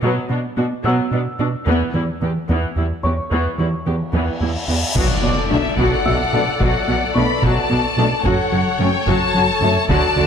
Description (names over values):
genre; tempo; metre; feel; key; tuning
cinematic, hybrid orchestral and electronic film score; 73 BPM (dotted quarters); 6/8; straight; B minor; A4 = 440 Hz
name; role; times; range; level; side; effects
rich symphonic viola section; accompaniment; 0.0-10.2 s; E3 to G4; -23 LUFS; equal; none
rubbery square bass; riff; 0.0-10.3 s; D2 to B3; -23 LUFS; right 2 dB; none
rich symphonic cello section; bass; 0.0-10.3 s; E2 to D3; -24 LUFS; right 2 dB; none
dark concert grand piano; texture; 0.0-10.3 s; A4 to E6; -29 LUFS; left 1 dB; ping-pong delay
cymbal swell and impact; sound effects; 4.1-6.6 s; none; -25 LUFS; left 1 dB; none
warm symphonic violin section; melody; 5.0-10.3 s; D5 to B5; -21 LUFS; left 5 dB; none
warm symphonic violin section; second line; 5.0-10.3 s; A4 to D5; -23 LUFS; left 4 dB; none
dark symphonic double bass section; bass; 5.0-10.2 s; F#1 to D2; -24 LUFS; right 2 dB; none
taiko ensemble; drums; 5.0-10.3 s; none; -25 LUFS; left 1 dB; none
mellow French horn section; sustained chords; 5.5-9.7 s; A3 to D4; -25 LUFS; left 5 dB; none
room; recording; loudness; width
moderate scoring stage reverb, RT60 1.5 s; close, detailed microphones; -16 LUFS; side -7 dB against mid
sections
0.0-5.0 A section; 5.0-10.3 B section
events
build-up 0.0-5.0; cymbal swell 4.1-5.0; impact 5.0-6.6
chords
0.0 Bm; 1.7 Em; 5.0 Bm7; 8.2 F#m